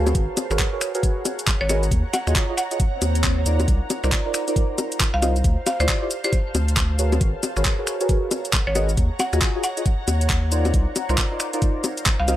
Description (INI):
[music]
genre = UK garage, two-step garage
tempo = 136 BPM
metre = 4/4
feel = swing 62% on 16ths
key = unclear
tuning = A4 = 440 Hz
[part]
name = deep mellow chord stab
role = stabs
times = 0.0-12.4 s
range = Eb4 to Eb5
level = -27 LUFS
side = right 1 dB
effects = chorus, phaser, dub echo
[part]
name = saturated sub bass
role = bass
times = 0.0-12.4 s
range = Ab1 to Eb2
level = -21 LUFS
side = equal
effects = sidechain pumping
[part]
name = ethereal airy pad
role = texture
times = 0.0-12.4 s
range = C5 to Bb5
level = -32 LUFS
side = right 1 dB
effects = ensemble chorus, built-in reverb, phaser, sidechain pumping
[part]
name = electronic kick drum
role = drums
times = 0.1-12.2 s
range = none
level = -22 LUFS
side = equal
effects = small room ambience
[part]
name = garage drum kit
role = drums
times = 0.1-12.4 s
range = bongos, cabasa, finger snaps, handclaps, hi-hat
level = -24 LUFS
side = left 2 dB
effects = small room ambience
[part]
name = buzzing marimba with hard mallets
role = melody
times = 1.6-12.4 s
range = C5 to Gb5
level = -26 LUFS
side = equal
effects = dub echo
[part]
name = swell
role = sound effects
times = 3.0-3.7 s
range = none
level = -31 LUFS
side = left 5 dB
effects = none
[sound]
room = little or no reverb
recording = none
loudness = -19 LUFS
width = side -13 dB against mid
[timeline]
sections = 0.0-12.4 A section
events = swell 3.0-3.7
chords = 0.1 Abm11; 1.9 Ebm11; 3.7 Cm11; 5.4 Dm11; 7.2 Abm11; 9.0 Ebm11; 10.7 Cm11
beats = | 0.15 0.59 1.03 1.47 | 1.91 2.36 2.80 3.24 | 3.68 4.12 4.56 5.00 | 5.44 5.88 6.33 6.77 | 7.21 7.65 8.09 8.53 | 8.97 9.41 9.86 10.30 | 10.74 11.18 11.62 12.06